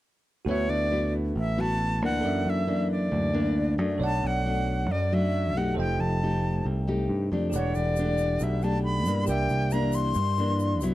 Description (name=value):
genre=bossa nova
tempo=136 BPM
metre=4/4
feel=straight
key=D major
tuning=A4 = 443 Hz
part: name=bell-like tine electric piano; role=accompaniment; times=0.4-10.9 s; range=F#4 to G5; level=-36 LUFS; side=right 6 dB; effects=none
part: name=breathy bright silver concert flute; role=melody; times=0.5-10.8 s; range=C#5 to C6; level=-30 LUFS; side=left 1 dB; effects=none
part: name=nylon-string guitar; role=accompaniment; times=0.5-10.9 s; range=F#2 to G4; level=-29 LUFS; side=left 2 dB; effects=none
part: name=picked electric bass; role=bass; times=0.5-10.9 s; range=E1 to G2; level=-27 LUFS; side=equal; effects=none
part: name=egg shaker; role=percussion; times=7.5-10.9 s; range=none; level=-44 LUFS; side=left 6 dB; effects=none
room=light reverb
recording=dark, warm production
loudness=-24 LUFS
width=side -15 dB against mid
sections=0.5-10.9 A section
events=none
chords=0.5 D69; 2.2 F#7alt; 4.0 Bm7; 5.8 F9; 7.5 Em11; 9.3 C9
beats=| 0.47 0.91 1.35 1.79 | 2.23 2.68 3.12 3.56 | 4.00 4.44 4.88 5.32 | 5.76 6.20 6.64 7.08 | 7.52 7.96 8.40 8.85 | 9.29 9.72 10.16 10.61